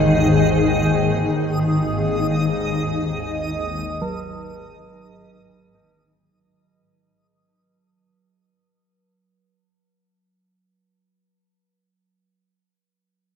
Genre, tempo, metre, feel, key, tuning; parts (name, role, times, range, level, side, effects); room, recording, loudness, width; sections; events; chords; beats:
ambient; free time; A4 = 440 Hz
granular cloud pad; sustained chords; 0.0-6.3 s; G#2 to G#4; -19 LUFS; left 1 dB; built-in reverb, ensemble chorus, shimmer reverb
bowed-like drone; drone; 0.0-6.4 s; G#1 to D#2; -27 LUFS; left 2 dB; built-in reverb, phaser
backwards swelling texture; texture; 0.0-6.3 s; D#5; -27 LUFS; right 1 dB; built-in reverb, shimmer reverb
bronze singing bowl; arpeggios; 4.0-10.9 s; F#3; -34 LUFS; right 3 dB
wet lush hall reverb, RT60 2.7 s; dreamy mix soaked in reverb; -18 LUFS; side -7 dB against mid
0.0-6.3 A section
fade-out 0.2-6.3
0.0 G#5
free time